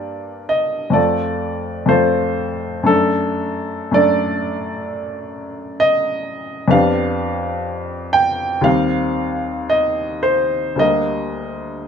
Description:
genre	classical, romantic nocturne for solo piano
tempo	52-67 BPM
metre	4/4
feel	rubato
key	G minor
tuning	A4 = 440 Hz
part	clear upright piano	solo	0.0-11.9 s	D2 to G5	-16 LUFS	equal	none
room	light reverb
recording	none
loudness	-16 LUFS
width	side -7 dB against mid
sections	0.0-11.9 A section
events	none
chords	0.0 Gm; 1.0 F; 2.9 D/F#; 6.7 G7/F; 8.7 Cm/Eb; 10.8 Gm/D

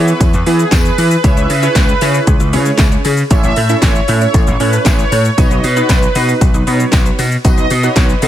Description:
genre	dance-pop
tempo	116 BPM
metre	4/4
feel	straight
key	unclear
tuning	A4 = 445 Hz
part	funky polysynth comp	accompaniment	0.0-8.3 s	B3 to E5	-20 LUFS	right 2 dB	chorus, sidechain pumping
part	gritty slap bass	bass	0.0-8.3 s	A1 to E3	-14 LUFS	equal	overdrive, sidechain pumping
part	supersaw pad	melody	0.1-8.1 s	G#4 to E5	-18 LUFS	right 2 dB	sidechain pumping
part	house drum kit	drums	0.1-8.3 s	handclaps, hi-hat, kick drum, shaker, snare drum	-13 LUFS	equal	none
part	tambourine	percussion	0.2-8.3 s	none	-32 LUFS	left 5 dB	none
part	mallet-like synth pluck	arpeggios	1.2-8.3 s	F#3 to E5	-23 LUFS	left 2 dB	chorus, phaser, sidechain pumping, dub echo
room	digital ambience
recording	none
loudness	-10 LUFS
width	side -12 dB against mid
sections	0.0-8.3 A section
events	none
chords	0.0 E; 1.2 C#m; 3.3 A; 5.4 B

